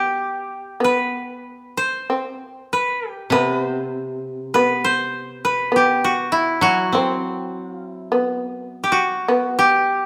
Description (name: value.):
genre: japanese traditional, Japanese chamber music.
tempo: 48-53 BPM.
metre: 4/4.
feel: rubato.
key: unclear.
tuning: A4 = 440 Hz.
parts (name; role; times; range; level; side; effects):
koto; melody; 0.0-10.1 s; E4 to C5; -21 LUFS; equal; none.
shamisen; second line; 0.0-10.1 s; B3 to C4; -25 LUFS; equal; none.
koto; accompaniment; 3.3-10.0 s; C3 to C4; -27 LUFS; equal; none.
room: moderate recital hall reverb, RT60 1.4 s.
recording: none.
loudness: -20 LUFS.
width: mono.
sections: 0.8-10.1 A section.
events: none.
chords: none.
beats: | 0.82 2.08 3.31 4.51 | 5.71 6.92 8.11 9.27.